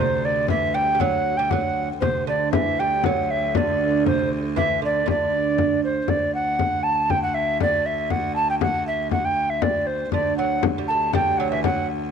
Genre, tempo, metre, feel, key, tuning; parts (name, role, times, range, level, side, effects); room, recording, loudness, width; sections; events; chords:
medieval dance; 118 BPM; 2/4; straight; D mixolydian; A4 = 440 Hz
mellow hollow tenor recorder; melody; 0.0-11.9 s; C5 to A5; -22 LUFS; right 1 dB
lute; second line; 0.0-5.8, 10.1-11.9 s; C3 to A3; -26 LUFS; right 12 dB
rich viola da gamba; drone; 0.0-12.1 s; D2; -30 LUFS; left 1 dB; stereo widening
frame drum; percussion; 0.5-11.9 s; -25 LUFS; left 7 dB
moderate plate reverb, RT60 2.7 s; 1960s-style stereo with parts hard left and right; -19 LUFS; side -7 dB against mid
0.0-6.1 A section; 6.1-12.1 B section